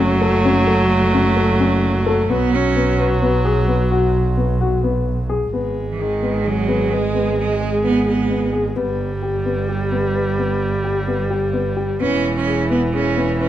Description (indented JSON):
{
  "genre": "contemporary instrumental, chamber music in an uneven meter",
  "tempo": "130 BPM",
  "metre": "7/4",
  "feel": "straight",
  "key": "G# phrygian",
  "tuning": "A4 = 441 Hz",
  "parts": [
    { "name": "clear cello", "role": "melody", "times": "0.0-13.5 s", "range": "D#3 to C#4", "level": "-21 LUFS", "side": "right 4 dB", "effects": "none" },
    { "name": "warm viola", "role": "second line", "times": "0.0-13.5 s", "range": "E3 to G#3", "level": "-21 LUFS", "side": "right 1 dB", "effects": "none" },
    { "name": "dark concert grand piano", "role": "arpeggios", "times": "0.0-13.5 s", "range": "B3 to B4", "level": "-22 LUFS", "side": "left 5 dB", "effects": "none" },
    { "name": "rich double bass", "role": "bass", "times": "0.0-13.5 s", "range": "E1 to B1", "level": "-21 LUFS", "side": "right 2 dB", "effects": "none" }
  ],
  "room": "light reverb",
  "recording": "dark, warm production",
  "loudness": "-16 LUFS",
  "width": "side -12 dB against mid",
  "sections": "0.0-5.5 A section; 5.5-13.5 B section",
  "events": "none",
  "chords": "0.0 F#m; 2.3 B5; 5.5 G#m; 8.8 G; 12.0 E6"
}